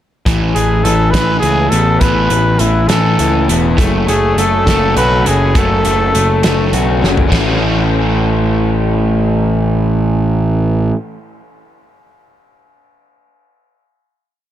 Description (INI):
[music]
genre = indie rock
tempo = 68 BPM (dotted quarters)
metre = 6/8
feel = straight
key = A major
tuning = A4 = 440 Hz
[part]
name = crunchy overdriven guitar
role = riff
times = 0.3-11.0 s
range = F#2 to E4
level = -19 LUFS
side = right 5 dB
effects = analog chorus, dub echo
[part]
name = overdriven semi-hollow guitar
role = riff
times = 0.3-11.0 s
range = E3 to F#4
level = -18 LUFS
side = left 6 dB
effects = dub echo
[part]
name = fuzz picked electric bass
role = bass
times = 0.3-10.9 s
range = E1 to C#2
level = -16 LUFS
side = equal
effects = overdrive
[part]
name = loose indie drum kit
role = drums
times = 0.3-7.5 s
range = hi-hat, kick drum, ride cymbal, snare drum, toms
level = -19 LUFS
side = equal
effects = dub echo
[part]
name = warm trumpet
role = melody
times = 0.5-6.7 s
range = E4 to B4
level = -16 LUFS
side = equal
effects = dub echo
[sound]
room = light reverb, small room ambience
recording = echo-heavy mix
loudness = -11 LUFS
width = side -11 dB against mid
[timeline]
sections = 0.3-7.3 verse; 7.3-10.8 final chord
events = drum fill 7.0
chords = 0.3 Asus2; 3.8 F#m; 7.3 A